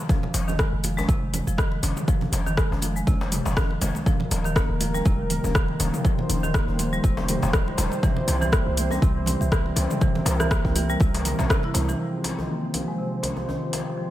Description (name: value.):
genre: afro house.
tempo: 121 BPM.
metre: 4/4.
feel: swing 56% on 16ths.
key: F minor.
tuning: A4 = 440 Hz.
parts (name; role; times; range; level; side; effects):
marimba with medium hard mallets; arpeggios; 0.1-14.1 s; C3 to E4; -28 LUFS; equal; sidechain pumping, low-pass filter, dub echo.
deep house drum kit; drums; 0.1-13.8 s; hi-hat, rim click, shaker, toms; -28 LUFS; left 1 dB; overdrive.
electronic kick drum; drums; 0.1-11.6 s; none; -22 LUFS; equal; overdrive.
djembe; percussion; 0.1-13.8 s; none; -34 LUFS; left 3 dB; none.
congas; percussion; 0.2-12.0 s; none; -34 LUFS; right 4 dB; none.
warm 808-style bass; bass; 0.3-11.9 s; Eb1 to C2; -27 LUFS; equal; sidechain pumping.
warm analog pad; sustained chords; 4.1-14.1 s; Eb3 to C5; -30 LUFS; right 1 dB; lush chorus, sidechain pumping.
room: digital ambience.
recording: none.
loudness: -21 LUFS.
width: side -14 dB against mid.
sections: 0.0-12.0 A section; 12.0-14.1 B section.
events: filter sweep on marimba 12.0-14.1.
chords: 0.0 N.C.; 4.1 Eb; 8.0 C; 12.0 Fmadd9.